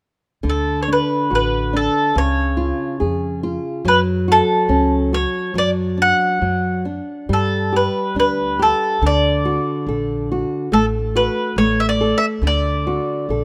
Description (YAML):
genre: fado-style ballad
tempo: 70 BPM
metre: 2/4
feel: rubato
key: D major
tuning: A4 = 437 Hz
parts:
  - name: nylon-string guitar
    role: accompaniment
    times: 0.4-13.4 s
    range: C#3 to A4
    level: -23 LUFS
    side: equal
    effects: none
  - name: upright bass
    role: bass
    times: 0.4-13.4 s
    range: A1 to G2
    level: -25 LUFS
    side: equal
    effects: none
  - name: mandolin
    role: melody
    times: 0.5-13.4 s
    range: A4 to F#5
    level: -20 LUFS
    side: equal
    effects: none
room: light reverb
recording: rough home demo mix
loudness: -18 LUFS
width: mono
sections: 0.4-13.4 A section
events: none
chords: 0.4 D; 2.2 C#; 3.9 F#m; 5.5 D/F#; 7.3 G5; 9.0 D; 10.7 F#madd11/A; 11.6 Aadd11; 12.4 D